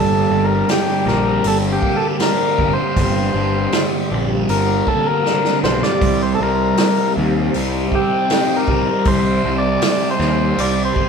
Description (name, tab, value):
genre	psychedelic rock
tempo	79 BPM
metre	4/4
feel	straight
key	G minor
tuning	A4 = 439 Hz
part	combo organ	melody	0.0-11.1 s	G4 to D5	-20 LUFS	left 1 dB	spring reverb
part	soft string machine	sustained chords	0.0-11.1 s	G3 to C5	-26 LUFS	right 1 dB	ensemble chorus
part	fuzz guitar	riff	0.0-11.1 s	G2 to Eb4	-20 LUFS	equal	distortion, phaser
part	fuzz picked electric bass	bass	0.0-10.9 s	G1 to Eb2	-21 LUFS	equal	overdrive
part	vintage drum kit	drums	0.7-11.1 s	hi-hat, kick drum, snare drum	-22 LUFS	right 1 dB	none
room	moderate stone room reverb, RT60 1.3 s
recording	band playing live in one room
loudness	-15 LUFS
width	side -6 dB against mid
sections	0.0-11.1 A section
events	transistor combo organ solo 0.0-11.1; drum fill 5.3-6.0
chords	0.0 Gm; 6.0 Cm